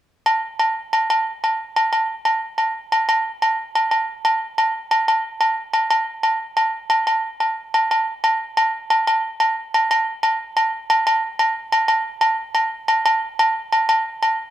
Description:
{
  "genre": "highlife",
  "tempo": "120 BPM (dotted quarters)",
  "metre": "12/8",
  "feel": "straight",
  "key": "none",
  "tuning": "none",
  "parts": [
    { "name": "agogo bells", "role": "percussion", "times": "0.3-14.4 s", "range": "none", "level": "-17 LUFS", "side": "equal", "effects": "none" }
  ],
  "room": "moderate spring reverb, RT60 1.7 s",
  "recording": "none",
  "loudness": "-17 LUFS",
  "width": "side -12 dB against mid",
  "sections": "0.3-8.2 A section; 8.2-14.5 B section",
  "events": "none",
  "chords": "none"
}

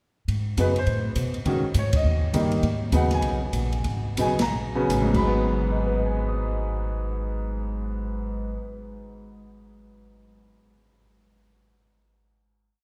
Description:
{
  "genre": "jazz piano trio",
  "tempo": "145-205 BPM",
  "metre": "4/4",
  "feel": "swing 62% on 8ths",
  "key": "G# minor",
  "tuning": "A4 = 440 Hz",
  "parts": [
    { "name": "upright bass", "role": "bass", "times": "0.3-8.6 s", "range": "G#1 to B2", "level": "-28 LUFS", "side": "equal", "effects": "none" },
    { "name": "open jazz drum kit", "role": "drums", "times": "0.3-5.2 s", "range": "crash cymbal, hi-hat, kick drum, ride cymbal, snare drum", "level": "-34 LUFS", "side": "equal", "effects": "none" },
    { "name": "clear upright piano", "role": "melody", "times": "0.6-9.7 s", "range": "G#2 to D#6", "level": "-28 LUFS", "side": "equal", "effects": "none" }
  ],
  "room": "wet cathedral reverb, RT60 5.0 s",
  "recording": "recorded in a church or concert hall",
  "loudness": "-25 LUFS",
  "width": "mono",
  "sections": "0.3-5.3 A section; 5.3-8.6 final chord",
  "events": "band accent 1.9, 4.4; slowing down 2.6-5.3",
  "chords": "0.3 G#m7; 0.9 Amadd9; 1.5 G#9sus4; 2.0 D#; 2.6 G#m9; 5.1 G#m7"
}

